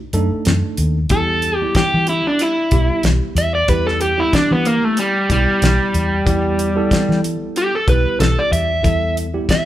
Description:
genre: straight-eighth soul blues.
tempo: 93 BPM.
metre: 4/4.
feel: swing 56% on 16ths.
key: E minor.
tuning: A4 = 440 Hz.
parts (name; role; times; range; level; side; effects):
mellow tine electric piano; accompaniment; 0.1-9.7 s; G3 to A4; -24 LUFS; right 2 dB; medium stereo tremolo.
vintage muted fingered electric bass; bass; 0.1-9.5 s; B1 to E3; -19 LUFS; equal; none.
damped 70s drum kit; drums; 0.1-9.7 s; hi-hat, kick drum, snare drum; -19 LUFS; left 1 dB; none.
crunchy overdriven guitar; melody; 1.1-9.7 s; G3 to E5; -17 LUFS; equal; none.
room: light reverb.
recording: band playing live in one room.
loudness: -14 LUFS.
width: side -13 dB against mid.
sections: 0.0-1.1 A section; 1.1-9.7 B section.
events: overdriven electric guitar solo 1.1-9.7.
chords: 0.0 B7#9 (rootless); 1.1 Em.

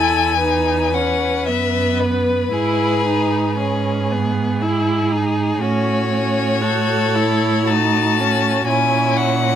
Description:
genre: classical, slow romantic movement for string quartet.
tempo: 54-62 BPM.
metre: 3/4.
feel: rubato.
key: E major.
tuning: A4 = 440 Hz.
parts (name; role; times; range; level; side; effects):
rich violin; melody; 0.0-9.6 s; B4 to A5; -20 LUFS; left 7 dB; none.
clear violin; second line; 0.0-9.6 s; E4 to B4; -23 LUFS; left 2 dB; none.
rich viola; accompaniment; 0.0-9.6 s; B3 to F#4; -21 LUFS; right 2 dB; none.
rich cello; bass; 0.0-9.6 s; E2 to A#2; -21 LUFS; right 4 dB; none.
room: light reverb.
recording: none.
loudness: -16 LUFS.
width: side -9 dB against mid.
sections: 0.0-9.6 A section.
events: none.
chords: 0.0 E; 2.5 E/G#; 5.6 F#m/A; 8.7 F#7/A#.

